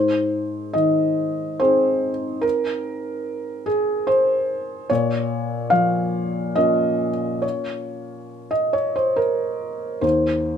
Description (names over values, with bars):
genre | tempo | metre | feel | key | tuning
neoclassical minimalist piano | 71 BPM | 3/4 | uneven beats, rubato | unclear | A4 = 444 Hz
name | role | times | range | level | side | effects
felt-muted upright piano | solo | 0.0-10.6 s | Eb2 to F5 | -19 LUFS | equal | none
room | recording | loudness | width
light reverb | minimal, uncompressed stereo recording | -19 LUFS | side -8 dB against mid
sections
0.0-10.6 A section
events
none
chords
0.0 Ab; 4.9 Bbm; 10.0 N.C.